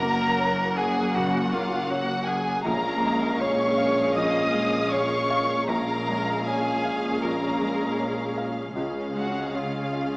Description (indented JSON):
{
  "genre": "cinematic",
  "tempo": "79 BPM",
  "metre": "4/4",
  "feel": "rubato",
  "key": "unclear",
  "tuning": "A4 = 441 Hz",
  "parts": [
    { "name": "muted cello", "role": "melody", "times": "0.0-10.2 s", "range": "F4 to Eb5", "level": "-28 LUFS", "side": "equal", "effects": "none" },
    { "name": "muted studio violin section", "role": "melody", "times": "0.0-10.2 s", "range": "F5 to Gb5", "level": "-35 LUFS", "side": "equal", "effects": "none" },
    { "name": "muted studio violin section", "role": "second line", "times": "0.0-10.2 s", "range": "F5 to Eb6", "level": "-29 LUFS", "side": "equal", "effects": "none" },
    { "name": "felt-muted upright piano", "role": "accompaniment", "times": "0.0-10.2 s", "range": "Bb1 to Gb5", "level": "-31 LUFS", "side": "equal", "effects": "none" },
    { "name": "muted studio viola section", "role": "accompaniment", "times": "0.0-10.2 s", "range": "Gb3 to Ab4", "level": "-32 LUFS", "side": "equal", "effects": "none" },
    { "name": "mellow French horn section", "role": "sustained chords", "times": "0.0-10.2 s", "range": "Ab3 to Db4", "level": "-31 LUFS", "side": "left 1 dB", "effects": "none" },
    { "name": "muted studio cello section", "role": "bass", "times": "0.0-10.2 s", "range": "Gb2 to Db3", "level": "-33 LUFS", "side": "equal", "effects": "none" },
    { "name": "muted studio double bass section", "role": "bass", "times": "0.0-10.2 s", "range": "Gb1 to Db2", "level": "-34 LUFS", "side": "equal", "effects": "none" },
    { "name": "timpani", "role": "percussion", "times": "2.7-3.8 s", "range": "Bb2", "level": "-40 LUFS", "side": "equal", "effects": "none" }
  ],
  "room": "wet scoring stage reverb, RT60 1.7 s",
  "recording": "small speaker sound",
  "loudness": "-22 LUFS",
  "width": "side -28 dB against mid",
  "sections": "0.0-10.2 A section",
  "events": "none",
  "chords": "0.0 Gb; 2.6 Bbm7; 8.8 Db"
}